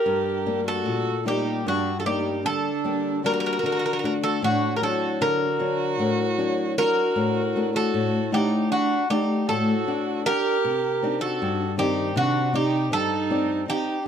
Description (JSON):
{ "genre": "greek folk, Greek bouzouki band", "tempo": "154 BPM (eighths)", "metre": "9/8", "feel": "straight", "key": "unclear", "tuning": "A4 = 438 Hz", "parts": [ { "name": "Greek bouzouki", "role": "melody", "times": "0.0-14.1 s", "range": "F#4 to Bb4", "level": "-25 LUFS", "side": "equal", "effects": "none" }, { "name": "dark violin", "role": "second line", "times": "0.0-14.0 s", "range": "D4 to G4", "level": "-27 LUFS", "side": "right 4 dB", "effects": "none" }, { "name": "flamenco guitar", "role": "accompaniment", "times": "0.1-14.1 s", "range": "G2 to F#5", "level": "-26 LUFS", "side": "left 3 dB", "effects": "none" } ], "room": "moderate small room ambience, RT60 0.5 s", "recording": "dark, warm production", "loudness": "-21 LUFS", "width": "side -8 dB against mid", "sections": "0.0-14.1 A section", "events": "speeding up 0.0-14.1", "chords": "0.1 Gm; 3.7 D; 10.6 Cmadd9" }